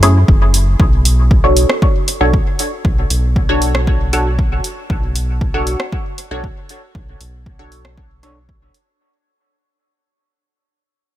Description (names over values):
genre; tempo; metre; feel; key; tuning
dub techno; 117 BPM; 4/4; straight; unclear; A4 = 441 Hz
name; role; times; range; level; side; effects
filtered dub chord stab; stabs; 0.0-8.4 s; A3 to C#5; -19 LUFS; equal; chorus, phaser, sidechain pumping, dub echo
round analog bass; bass; 0.0-8.7 s; F#1 to F#2; -15 LUFS; equal; sidechain pumping
deep house drum kit; drums; 0.0-8.8 s; hi-hat, rim click; -20 LUFS; right 1 dB; overdrive, studio reverb, dub echo
electronic kick drum; drums; 0.3-8.6 s; none; -15 LUFS; equal; overdrive, studio reverb
room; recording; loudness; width
little or no reverb; none; -12 LUFS; side -13 dB against mid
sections
0.0-9.0 A section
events
filter sweep on synth stab 0.0-9.0; fade-out 0.8-9.0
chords
0.0 F#m7; 0.8 Bm7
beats
0.28 | 0.80 1.31 1.82 2.33 | 2.85 3.36 3.87 4.39 | 4.90 5.41 5.92 6.44 | 6.95 7.46 7.98 8.49